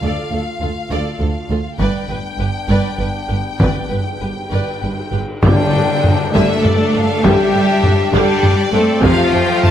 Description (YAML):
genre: cinematic, epic orchestral film score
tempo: 67 BPM (dotted quarters)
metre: 6/8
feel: straight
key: unclear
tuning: A4 = 440 Hz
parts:
  - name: rich symphonic violin section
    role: melody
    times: 0.0-9.7 s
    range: D5 to A5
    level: -25 LUFS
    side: left 1 dB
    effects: none
  - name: warm symphonic violin section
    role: second line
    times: 0.0-9.7 s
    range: G3 to D5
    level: -26 LUFS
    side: left 2 dB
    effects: none
  - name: warm symphonic viola section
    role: accompaniment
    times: 0.0-9.7 s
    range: C3 to B4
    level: -22 LUFS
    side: right 1 dB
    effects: none
  - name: warm French horn section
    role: sustained chords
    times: 0.0-9.7 s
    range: A3 to A4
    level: -21 LUFS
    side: left 4 dB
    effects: none
  - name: rich symphonic cello section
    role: bass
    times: 0.0-9.7 s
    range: D2 to A3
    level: -21 LUFS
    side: right 2 dB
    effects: none
  - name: rich symphonic double bass section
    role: bass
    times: 0.0-9.7 s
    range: G1 to G2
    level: -21 LUFS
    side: right 2 dB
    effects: none
  - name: solo taiko drums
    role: drums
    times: 1.8-9.7 s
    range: none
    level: -18 LUFS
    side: equal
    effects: none
  - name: cymbal swell and tam-tam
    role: percussion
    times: 1.8-7.8 s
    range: none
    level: -26 LUFS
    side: left 4 dB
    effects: none
  - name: timpani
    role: percussion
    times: 5.4-6.3 s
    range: G2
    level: -21 LUFS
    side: left 1 dB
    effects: none
room: moderate scoring stage reverb, RT60 1.9 s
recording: none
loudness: -13 LUFS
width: side -10 dB against mid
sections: 0.0-5.4 A section; 5.4-9.7 B section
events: band accent 5.4-6.0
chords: 0.0 Dm; 1.8 G; 5.4 Gsus2; 9.0 F